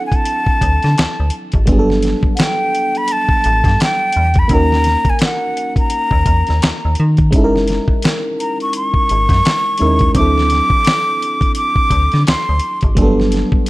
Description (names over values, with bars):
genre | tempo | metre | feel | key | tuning
R&B, neo-soul | 85 BPM | 4/4 | swing 59% on 16ths | unclear | A4 = 436 Hz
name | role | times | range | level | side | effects
breathy concert flute | melody | 0.0-12.8 s | F#5 to D6 | -17 LUFS | equal | none
FM electric piano | accompaniment | 0.0-13.7 s | F#3 to A#4 | -20 LUFS | right 1 dB | chorus
dusty soul sampler-style drum kit | drums | 0.1-13.7 s | handclaps, hi-hat, kick drum, snare drum | -16 LUFS | equal | none
metallic FM bass | bass | 0.6-13.6 s | F#1 to D#3 | -16 LUFS | equal | none
room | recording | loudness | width
digital ambience | dark, warm production | -12 LUFS | side -19 dB against mid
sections
0.0-13.7 A section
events
none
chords
0.0 D7; 1.7 Gmaj9; 4.5 D#m7; 7.3 F#13; 10.1 D7; 13.0 Gmaj9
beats
0.26 0.97 | 1.67 2.38 3.08 3.79 | 4.50 5.20 5.91 6.62 | 7.32 8.03 8.73 9.44 | 10.14 10.85 11.56 12.26 | 12.97 13.67